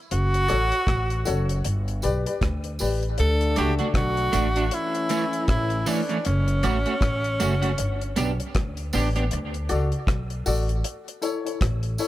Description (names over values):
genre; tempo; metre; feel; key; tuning
dub reggae; 78 BPM; 4/4; swing 59% on 16ths; D major; A4 = 442 Hz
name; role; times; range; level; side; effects
bright tenor saxophone; melody; 0.1-8.5 s; C#4 to A4; -26 LUFS; equal; dub echo
upright bass; bass; 0.1-12.0 s; F#1 to D2; -25 LUFS; equal; none
deep reggae drum kit; drums; 0.1-12.1 s; hi-hat, kick drum, rim click; -28 LUFS; equal; none
dark upright piano; stabs; 0.5-3.0, 9.7-12.1 s; E4 to D5; -30 LUFS; left 5 dB; dub echo
tambourine and woodblock; percussion; 0.5-12.1 s; none; -38 LUFS; right 3 dB; dub echo
warm trombone section; second line; 3.2-5.8 s; D3 to D4; -31 LUFS; left 3 dB; dub echo
electric guitar at the edge of break-up; accompaniment; 3.6-9.2 s; E3 to G4; -28 LUFS; right 3 dB; analog chorus, dub echo
room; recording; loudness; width
light reverb, small room reverb; none; -22 LUFS; side -15 dB against mid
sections
0.0-12.1 A section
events
break 0.0-3.2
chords
0.1 F#m; 1.6 G; 3.2 D; 4.7 A; 6.2 F#m; 7.8 G; 9.3 D; 10.8 A